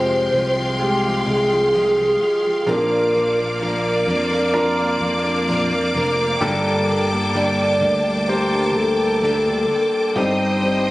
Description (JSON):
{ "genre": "pop ballad", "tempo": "64 BPM", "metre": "4/4", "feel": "straight", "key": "Bb major", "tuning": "A4 = 440 Hz", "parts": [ { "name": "hollow clarinet-like synth lead", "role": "melody", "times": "0.0-10.9 s", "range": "G4 to D5", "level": "-19 LUFS", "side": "equal", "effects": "chorus" }, { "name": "warm concert grand piano", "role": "accompaniment", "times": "0.0-10.9 s", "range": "G2 to G5", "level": "-24 LUFS", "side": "equal", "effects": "none" }, { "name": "bright studio string section", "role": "sustained chords", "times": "0.0-10.9 s", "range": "Ab3 to Eb6", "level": "-23 LUFS", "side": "equal", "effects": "none" }, { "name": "fingerpicked plugged-in steel-string acoustic guitar", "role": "arpeggios", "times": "0.0-10.9 s", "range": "F2 to Bb4", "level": "-25 LUFS", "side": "equal", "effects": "none" }, { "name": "modern bright fingered electric bass", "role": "bass", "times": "0.0-10.9 s", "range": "F1 to F2", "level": "-26 LUFS", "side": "equal", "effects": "none" } ], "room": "light reverb, studio reverb", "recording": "recorded on a phone in the room", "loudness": "-16 LUFS", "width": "side -18 dB against mid", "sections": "0.0-10.9 A section", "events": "none", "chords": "0.0 Fmadd9; 2.7 Bb; 6.4 Gmadd9; 10.2 Cm/G" }